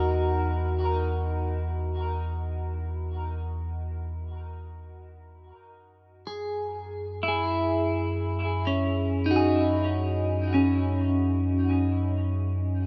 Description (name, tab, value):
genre	ambient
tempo	free time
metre	none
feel	none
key	unclear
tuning	A4 = 440 Hz
part	clean electric guitar	arpeggios	0.0-1.2, 6.3-12.1 s	C#4 to A#4	-29 LUFS	equal	phaser, diffuse ambient delay
part	warm sub bass	bass	0.0-12.9 s	E2 to F#2	-31 LUFS	equal	tube saturation
room	wet huge ambient reverb, RT60 8.6 s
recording	none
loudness	-27 LUFS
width	mono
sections	0.0-12.9 A section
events	none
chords	0.0 Esus2; 5.6 F#7(no3)